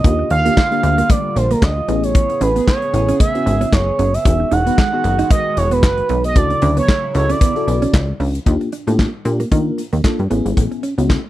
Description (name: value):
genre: early-eighties boogie funk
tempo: 114 BPM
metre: 4/4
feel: swing 56% on 16ths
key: unclear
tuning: A4 = 439 Hz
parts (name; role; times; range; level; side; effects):
- expressive synth lead; melody; 0.0-8.1 s; Bb4 to F#5; -18 LUFS; right 3 dB; chorus, slapback echo
- mellow FM electric piano; accompaniment; 0.0-11.2 s; C#3 to B4; -22 LUFS; left 3 dB; chorus, phaser
- chorused pulse-width pad; sustained chords; 0.0-8.4 s; C#3 to G#4; -28 LUFS; left 1 dB; none
- plucky analog bass; bass; 0.0-11.2 s; E1 to Eb3; -18 LUFS; equal; none
- modern studio drum kit; drums; 0.0-11.2 s; handclaps, hi-hat, kick drum, snare drum; -16 LUFS; equal; none
- mellow electric guitar; riff; 0.2-11.3 s; G#3 to D#4; -23 LUFS; right 6 dB; analog chorus
room: little or no reverb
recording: none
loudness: -14 LUFS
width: side -14 dB against mid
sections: 0.0-8.5 A section; 8.5-11.3 B section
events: none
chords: 0.0 Ebmaj9; 1.9 Amaj9; 4.3 Emaj9; 6.4 Dmaj9; 8.5 Ebmaj9; 10.3 Amaj9